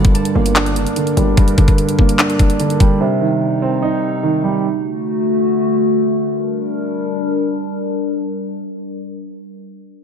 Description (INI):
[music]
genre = hip hop, trap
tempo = 147 BPM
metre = 4/4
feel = half-time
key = G harmonic minor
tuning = A4 = 440 Hz
[part]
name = dark concert grand piano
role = accompaniment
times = 0.0-4.7 s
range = G2 to Eb4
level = -17 LUFS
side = right 5 dB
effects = low-pass filter
[part]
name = warbly tape-like pad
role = sustained chords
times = 0.0-9.5 s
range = C3 to Bb4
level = -19 LUFS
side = left 2 dB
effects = chorus, built-in reverb, low-pass filter
[part]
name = distorted 808-style bass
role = bass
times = 0.0-1.4 s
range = F#1 to G1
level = -18 LUFS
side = left 1 dB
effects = distortion
[part]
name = trap drum kit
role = drums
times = 0.0-2.9 s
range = handclaps, hi-hat, kick drum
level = -14 LUFS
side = left 1 dB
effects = none
[sound]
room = light reverb, digital ambience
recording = none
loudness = -14 LUFS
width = side -7 dB against mid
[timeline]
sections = 0.0-6.3 A section; 6.3-9.5 B section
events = filter sweep 0.0-6.3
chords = 0.0 Gm; 3.0 Cm; 4.6 D; 6.3 Gm